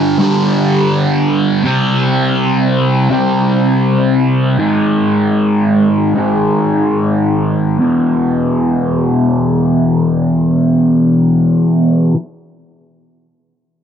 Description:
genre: rock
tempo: 70-83 BPM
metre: 4/4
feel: straight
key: unclear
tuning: A4 = 440 Hz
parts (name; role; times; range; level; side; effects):
- fuzz guitar; riff; 0.0-12.2 s; E2 to C4; -11 LUFS; equal; distortion, phaser, low-pass filter
room: little or no reverb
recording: dry, close 1970s-style studio recording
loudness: -11 LUFS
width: side -8 dB against mid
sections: 0.0-7.8 A section; 7.8-11.2 B section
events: filter sweep on distorted electric guitar 0.0-7.8; slowing down 1.6-7.8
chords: 0.0 G5; 1.6 C5; 4.6 G#5; 7.8 E5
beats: 0.19 0.92 | 1.64 2.36 3.09 3.83 | 4.59 5.36 6.14 6.96 | 7.79 8.65 9.50 10.35

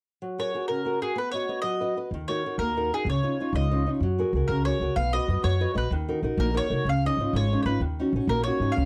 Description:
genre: italian folk, Italian serenade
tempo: 126 BPM (dotted quarters)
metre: 6/8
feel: straight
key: F# major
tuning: A4 = 440 Hz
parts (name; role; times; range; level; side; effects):
- flamenco guitar; accompaniment; 0.2-8.9 s; C#3 to D#5; -30 LUFS; equal; none
- mandolin; melody; 0.4-8.9 s; G#4 to E#5; -31 LUFS; equal; none
- upright bass; bass; 2.1-8.9 s; G#1 to G#2; -29 LUFS; equal; none
room: light reverb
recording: dry, close 1970s-style studio recording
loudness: -26 LUFS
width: mono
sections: 0.2-4.0 A section; 4.0-8.9 B section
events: none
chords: 0.2 F#add9; 1.2 B; 2.1 D#m; 3.1 C#add9; 4.0 F#add9; 5.0 B; 5.9 D#m; 6.9 C#add9; 7.8 D#m7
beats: | 0.21 0.69 | 1.17 1.65 | 2.12 2.59 | 3.07 3.55 | 4.03 4.50 | 4.97 5.44 | 5.91 6.38 | 6.86 7.33 | 7.81 8.29 | 8.76

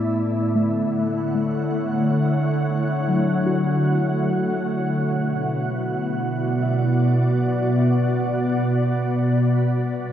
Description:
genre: ambient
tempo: 52 BPM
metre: 4/4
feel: straight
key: unclear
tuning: A4 = 440 Hz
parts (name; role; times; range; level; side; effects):
- glassy FM pad; sustained chords; 0.0-10.1 s; A2 to F#5; -20 LUFS; equal; ensemble chorus, built-in reverb, shimmer reverb
- muted felt-like synth keys; arpeggios; 0.0-10.1 s; F#3 to E5; -27 LUFS; left 1 dB; chorus, diffuse ambient delay, shimmer reverb
room: wet huge ambient reverb, RT60 7.9 s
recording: dark, warm production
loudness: -19 LUFS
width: side -10 dB against mid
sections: 0.0-10.1 A section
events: fade-out on synth keys 0.0-10.1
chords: 0.2 Dmaj7; 4.8 Bm; 9.4 Gadd9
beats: | 0.19 1.34 2.49 3.65 | 4.80 5.96 7.11 8.26 | 9.42

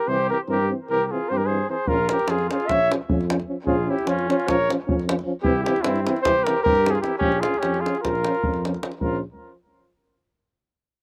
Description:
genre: balkan folk, Balkan brass band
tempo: 303 BPM (eighths)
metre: 9/8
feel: straight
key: Bb dorian sharp4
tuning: A4 = 441 Hz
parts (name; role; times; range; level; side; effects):
- mellow flugelhorn; melody; 0.0-9.2 s; E4 to E5; -25 LUFS; equal; slapback echo
- mellow trumpet; second line; 0.0-9.2 s; C4 to Db5; -31 LUFS; equal; slapback echo
- mellow French horn; accompaniment; 0.1-9.2 s; C4 to Db4; -31 LUFS; equal; slapback echo
- mellow euphonium; accompaniment; 0.1-9.2 s; E3 to F3; -33 LUFS; equal; none
- mellow tuba; bass; 0.1-9.2 s; Bb1 to G2; -30 LUFS; equal; none
- davul; percussion; 1.9-9.2 s; none; -31 LUFS; equal; none
room: little or no reverb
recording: recorded outdoors, with no room sound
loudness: -22 LUFS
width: mono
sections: 0.0-9.0 A section; 9.0-10.8 B section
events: none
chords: 0.0 C; 1.9 Bbm; 5.4 C; 7.2 Bbm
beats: | 0.07 0.27 0.47 0.67 0.87 1.07 1.27 1.47 1.67 | 1.86 2.06 2.26 2.46 2.66 2.86 3.06 3.26 3.46 | 3.65 3.85 4.05 4.25 4.45 4.65 4.84 5.04 5.24 | 5.44 5.64 5.84 6.03 6.23 6.43 6.63 6.83 7.02 | 7.22 7.42 7.62 7.81 8.01 8.21 8.41 8.60 8.80 | 9.00 9.20

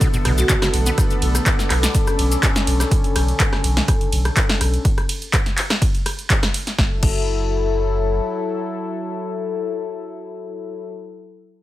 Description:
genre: acid house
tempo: 124 BPM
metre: 4/4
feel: straight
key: F# minor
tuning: A4 = 442 Hz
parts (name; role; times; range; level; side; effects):
- warm analog pad; sustained chords; 0.0-10.9 s; D3 to A4; -25 LUFS; left 3 dB; chorus, sidechain pumping
- acid bass, square; riff; 0.0-0.9 s; B1 to B3; -25 LUFS; equal; overdrive, cassette tape, digital delay
- electronic kick drum; drums; 0.0-7.2 s; none; -19 LUFS; equal; none
- punchy analog drum machine; drums; 0.0-7.2 s; crash cymbal, handclaps, hi-hat, ride cymbal, rim click, snare drum; -22 LUFS; equal; none
- maracas; percussion; 0.0-2.9 s; none; -29 LUFS; left 2 dB; none
- granular cloud pad; texture; 0.0-2.9 s; F#4 to D6; -32 LUFS; right 1 dB; built-in reverb, sidechain pumping
- warm sub bass; bass; 0.3-8.2 s; F#1 to B1; -20 LUFS; equal; tube saturation, sidechain pumping
- vibraphone with hard mallets; melody; 0.4-0.6 s; F#4; -27 LUFS; right 1 dB; dub echo
room: little or no reverb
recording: none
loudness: -17 LUFS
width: side -15 dB against mid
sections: 0.0-6.8 A section; 6.8-10.7 B section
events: drop 0.0-6.8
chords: 0.0 Bm7; 6.8 F#m7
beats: 0.01 0.49 | 0.98 1.46 1.95 2.43 | 2.91 3.40 3.88 4.37 | 4.85 5.33 5.82 6.30 | 6.78 7.27 7.75 8.24 | 8.72 9.20 9.69 10.17

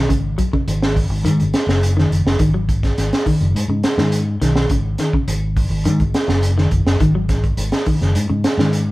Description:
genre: afrobeat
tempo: 104 BPM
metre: 4/4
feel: straight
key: G# minor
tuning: A4 = 438 Hz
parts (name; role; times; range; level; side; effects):
- clean electric guitar; arpeggios; 0.0-8.8 s; C#3 to F#3; -20 LUFS; left 1 dB; none
- fingered electric bass; bass; 0.0-8.9 s; F#1 to G#2; -18 LUFS; equal; none
- crunchy breakbeat drum kit; drums; 0.1-8.9 s; hi-hat, kick drum, snare drum; -19 LUFS; right 1 dB; none
room: moderate studio reverb, RT60 0.5 s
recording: band playing live in one room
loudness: -15 LUFS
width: side -18 dB against mid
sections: 0.0-8.9 A section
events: none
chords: 0.0 G#7(no3)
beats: | 0.09 0.67 1.25 1.82 | 2.40 2.97 3.55 4.12 | 4.70 5.28 5.85 6.43 | 7.00 7.58 8.16 8.73

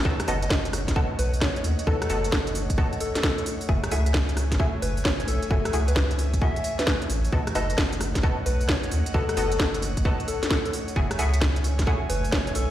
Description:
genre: UK garage, two-step garage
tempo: 132 BPM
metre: 4/4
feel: swing 65% on 16ths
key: unclear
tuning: A4 = 441 Hz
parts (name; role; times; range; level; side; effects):
- airy breathy pad; sustained chords; 0.0-12.7 s; A3 to G#5; -36 LUFS; right 2 dB; chorus, sidechain pumping
- punchy chord stab; stabs; 0.0-12.0 s; A3 to A4; -32 LUFS; equal; chorus, tape echo
- saturated sub bass; bass; 0.1-12.7 s; F#1 to D#2; -26 LUFS; equal; none
- electronic kick drum; drums; 0.1-12.4 s; none; -27 LUFS; equal; none
- garage drum kit; drums; 0.2-12.7 s; hi-hat, rim click, snare drum; -28 LUFS; equal; none
- soft struck synth lead; melody; 0.3-12.7 s; A4 to E5; -32 LUFS; left 2 dB; chorus, tape echo
room: light reverb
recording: played on a big sound system in a bare room, large studio reverb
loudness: -22 LUFS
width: side -12 dB against mid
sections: 0.0-12.7 A section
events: none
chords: 0.1 B7; 3.7 F#m9; 7.3 B7; 11.0 F#m9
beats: | 0.05 0.51 0.96 1.42 | 1.87 2.33 2.78 3.23 | 3.69 4.14 4.60 5.05 | 5.51 5.96 6.42 6.87 | 7.33 7.78 8.23 8.69 | 9.14 9.60 10.05 10.51 | 10.96 11.42 11.87 12.32

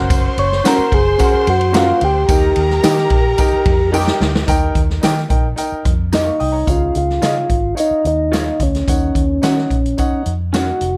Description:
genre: uptempo 1960s-style soul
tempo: 109 BPM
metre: 4/4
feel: straight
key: unclear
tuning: A4 = 440 Hz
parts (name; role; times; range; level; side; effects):
- warm studio string section; second line; 0.0-4.5 s; G4 to C6; -27 LUFS; equal; none
- warm baby grand piano; accompaniment; 0.0-10.9 s; Db3 to Eb6; -24 LUFS; equal; none
- vintage muted fingered electric bass; bass; 0.0-11.0 s; F1 to Eb3; -22 LUFS; equal; none
- swinging big-band drum kit; drums; 0.1-10.9 s; hi-hat, kick drum, ride cymbal, snare drum; -21 LUFS; equal; none
- tambourine; percussion; 0.1-10.7 s; none; -34 LUFS; equal; none
- percussive tonewheel organ; melody; 0.4-11.0 s; Db4 to Db5; -19 LUFS; equal; slow rotary speaker
- electric guitar through a small old amp; stabs; 0.6-10.6 s; Db4 to Eb5; -24 LUFS; equal; slapback echo
room: light reverb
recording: none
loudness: -16 LUFS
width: mono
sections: 0.0-4.5 A section; 4.5-6.7 B section; 6.7-11.0 C section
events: drum fill 3.9-4.5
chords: 0.0 Gb; 2.3 Eb; 6.7 Dbadd9; 8.9 Ebm7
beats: | 0.10 0.65 1.20 1.74 | 2.29 2.84 3.38 3.93 | 4.48 5.03 5.58 6.13 | 6.68 7.23 7.78 8.33 | 8.88 9.43 9.98 10.54

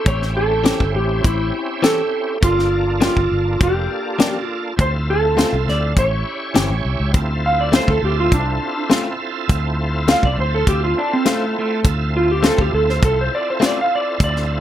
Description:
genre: straight-eighth soul blues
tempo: 102 BPM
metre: 4/4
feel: straight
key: D minor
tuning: A4 = 440 Hz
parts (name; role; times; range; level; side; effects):
- clean lap steel guitar; melody; 0.0-14.6 s; A3 to F5; -20 LUFS; right 1 dB; none
- bright tonewheel organ; accompaniment; 0.0-14.6 s; Bb3 to C#5; -25 LUFS; right 2 dB; slow rotary speaker, overdrive, chorus vibrato
- vintage muted fingered electric bass; bass; 0.1-14.6 s; F1 to D2; -21 LUFS; equal; none
- tight funk drum kit; drums; 0.1-14.4 s; hi-hat, kick drum, snare drum; -17 LUFS; left 1 dB; none
- direct-recorded clean electric guitar; stabs; 0.6-13.8 s; E3 to G4; -24 LUFS; left 5 dB; tape echo
room: light reverb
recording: none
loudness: -16 LUFS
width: side -11 dB against mid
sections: 0.0-7.1 A section; 7.1-14.6 B section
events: electric slide guitar solo 7.1-14.6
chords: 0.0 A7#9; 2.4 Gm7; 4.8 Dm7; 6.0 A7#9; 7.1 Dm7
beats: | 0.06 0.65 1.24 1.83 | 2.42 3.01 3.60 4.19 | 4.78 5.37 5.96 6.55 | 7.14 7.73 8.32 8.91 | 9.49 10.08 10.67 11.26 | 11.85 12.44 13.02 13.61 | 14.20

